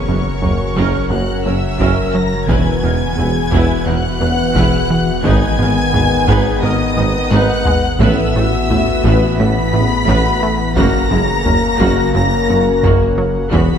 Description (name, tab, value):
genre	cinematic, hybrid orchestral and electronic film score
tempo	87 BPM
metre	4/4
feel	straight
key	unclear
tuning	A4 = 440 Hz
part	rich chamber violin section	melody	0.0-13.8 s	C#6 to B6	-25 LUFS	left 1 dB	none
part	warm symphonic violin section	second line	0.0-13.8 s	C#5 to B5	-23 LUFS	left 4 dB	none
part	rich symphonic viola section	accompaniment	0.0-13.8 s	G#3 to B4	-23 LUFS	right 1 dB	none
part	airy breathy pad	sustained chords	0.0-13.8 s	B2 to B4	-24 LUFS	left 2 dB	chorus
part	dark French horn section	sustained chords	0.0-13.8 s	B3 to B4	-23 LUFS	left 5 dB	none
part	mellow trombone section	sustained chords	0.0-13.8 s	B2 to C#4	-24 LUFS	right 2 dB	none
part	sub bass with octave	bass	0.0-13.8 s	E1 to A1	-24 LUFS	equal	none
part	soft round pluck	arpeggios	0.1-13.7 s	E3 to E4	-26 LUFS	left 4 dB	none
part	plucky analog bass	riff	0.1-13.7 s	E2 to A3	-20 LUFS	right 1 dB	none
part	rich symphonic cello section	bass	0.1-13.6 s	E2 to A2	-24 LUFS	right 2 dB	none
part	rich symphonic double bass section	bass	0.1-13.6 s	E1 to A1	-23 LUFS	right 4 dB	none
part	warm tuba	bass	0.1-13.7 s	E1 to A1	-24 LUFS	right 3 dB	none
part	taiko ensemble	drums	0.4-13.8 s	none	-21 LUFS	equal	none
room	moderate scoring stage reverb, RT60 1.9 s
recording	dark, warm production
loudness	-12 LUFS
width	side -8 dB against mid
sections	0.0-13.8 A section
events	drum fill 7.0-8.0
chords	0.0 F#; 2.5 Esus2; 5.3 G#m; 8.0 Asus2; 10.8 F#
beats	0.43 1.12 1.80 | 2.50 3.19 3.87 4.56 | 5.25 5.94 6.63 7.32 | 8.01 8.70 9.39 10.08 | 10.77 11.46 12.15 12.84 | 13.53